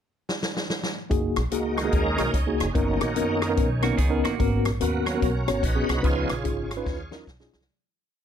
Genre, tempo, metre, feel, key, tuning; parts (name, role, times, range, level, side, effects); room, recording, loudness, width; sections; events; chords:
uptempo gospel; 146 BPM; 4/4; swing 63% on 8ths; F# major; A4 = 440 Hz
swinging big-band drum kit; drums; 0.3-7.7 s; hi-hat, kick drum, rim click, snare drum; -28 LUFS; equal
mellow tine electric piano; accompaniment; 1.1-7.6 s; G#2 to C#5; -26 LUFS; left 3 dB; medium stereo tremolo
upright bass; bass; 1.1-7.7 s; E#1 to F#2; -28 LUFS; equal
bright tonewheel organ; sustained chords; 1.5-7.3 s; D#3 to C#5; -29 LUFS; right 3 dB; slow rotary speaker, chorus vibrato
clean electric guitar; second line; 3.8-4.6 s; A#3 to G#4; -31 LUFS; right 9 dB
light reverb, studio reverb; dark, warm production; -22 LUFS; side -9 dB against mid
0.0-1.1 pickup bar; 1.1-7.7 breakdown
drum fill 0.3-1.1, 6.9-7.7; tonewheel organ solo 1.1-7.7; fade-out 6.0-7.7
0.0 N.C.; 1.1 F#69; 2.8 Bmaj9/F#; 4.4 G#m11; 6.0 C#9